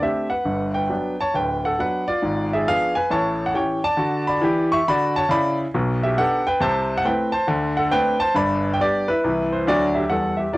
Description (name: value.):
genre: jazz, stride piano.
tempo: 137 BPM.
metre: 4/4.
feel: swing 65% on 8ths.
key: D major, G major from 5.7 s.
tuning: A4 = 441 Hz.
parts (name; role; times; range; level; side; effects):
clear grand piano; solo; 0.0-10.6 s; D1 to C#6; -18 LUFS; equal; cassette tape.
room: light reverb.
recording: home recording on cassette.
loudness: -18 LUFS.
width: side -20 dB against mid.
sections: 0.0-10.6 A section.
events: none.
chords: 0.5 Gmaj7; 2.2 G#dim7; 3.1 A7; 4.0 D; 5.7 G/B; 6.6 Am/C; 7.5 D5; 8.3 G; 9.2 C.